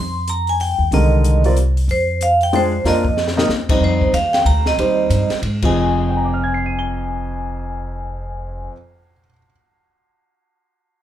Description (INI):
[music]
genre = modal jazz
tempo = 186 BPM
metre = 3/4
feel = swing 61% on 8ths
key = F dorian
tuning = A4 = 439 Hz
[part]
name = vibraphone with medium hard mallets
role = melody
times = 0.0-8.7 s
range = C5 to C6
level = -20 LUFS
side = right 1 dB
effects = none
[part]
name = upright bass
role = bass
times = 0.0-8.7 s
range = F1 to Ab2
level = -20 LUFS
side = equal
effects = none
[part]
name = compact cocktail drum kit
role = drums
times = 0.3-5.7 s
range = crash cymbal, hi-hat, kick drum, ride cymbal, snare drum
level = -24 LUFS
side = left 2 dB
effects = none
[part]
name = warm concert grand piano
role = accompaniment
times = 0.9-9.5 s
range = F2 to G7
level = -20 LUFS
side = equal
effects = none
[sound]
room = light reverb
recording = band playing live in one room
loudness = -15 LUFS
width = side -11 dB against mid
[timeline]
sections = 0.0-3.8 A section; 3.8-5.8 B section; 5.8-7.7 C section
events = drum fill 3.2-3.5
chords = 0.0 Fm9; 1.9 Cm/F; 3.8 Cm; 5.6 Fm7